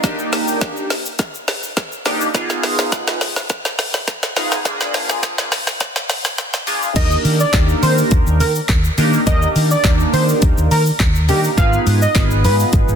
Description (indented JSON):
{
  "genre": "dance-pop",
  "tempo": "104 BPM",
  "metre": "4/4",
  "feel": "straight",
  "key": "Eb major",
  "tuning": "A4 = 438 Hz",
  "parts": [
    { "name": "chorused polysynth", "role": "accompaniment", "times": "0.0-13.0 s", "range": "Bb3 to Cb5", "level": "-20 LUFS", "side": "right 1 dB", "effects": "phaser, sidechain pumping" },
    { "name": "deep house drum kit", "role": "drums", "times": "0.0-13.0 s", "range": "crash cymbal, handclaps, hi-hat, kick drum, shaker, snare drum", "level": "-18 LUFS", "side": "equal", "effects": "none" },
    { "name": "wide unison lead", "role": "melody", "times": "7.0-12.6 s", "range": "G4 to F5", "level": "-20 LUFS", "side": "right 1 dB", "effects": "dub echo" },
    { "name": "vintage muted fingered electric bass", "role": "bass", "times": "7.0-13.0 s", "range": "Ab1 to Eb3", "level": "-16 LUFS", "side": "equal", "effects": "sidechain pumping" }
  ],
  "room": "light reverb, digital ambience",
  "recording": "dense, heavily limited modern master, high-pass filter",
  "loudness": "-14 LUFS",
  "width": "side -7 dB against mid",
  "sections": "0.0-7.0 A section; 7.0-13.0 B section",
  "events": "build-up 0.0-7.0; drum fill 0.0-7.0; drop 7.0-13.0",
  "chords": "0.0 Ebmaj7; 2.3 Abm6; 4.7 Bb7; 7.0 Ebmaj7; 11.6 Abm6"
}